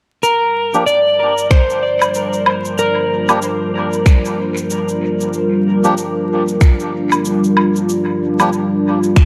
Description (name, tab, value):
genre	ambient dub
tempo	94 BPM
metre	4/4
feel	swing 59% on 16ths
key	G minor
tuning	A4 = 440 Hz
part	electric slide guitar	melody	0.2-3.7 s	Bb4 to D5	-20 LUFS	equal	dub echo
part	deep dark ambient pad	sustained chords	2.0-9.2 s	G3 to Bb4	-19 LUFS	equal	chorus, built-in reverb
part	electronic cabasa, finger snaps and woodblock	drums	0.2-9.2 s	none	-23 LUFS	equal	dub echo
part	melodica	stabs	0.7-8.5 s	F3 to G4	-24 LUFS	equal	low-pass filter, dub echo
part	electronic kick drum	drums	1.5-9.2 s	none	-11 LUFS	equal	none
room	wet scoring stage reverb, RT60 2.0 s, digital ambience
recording	dark, warm production, vinyl crackle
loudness	-15 LUFS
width	mono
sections	0.2-9.2 A section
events	none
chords	0.2 Gm7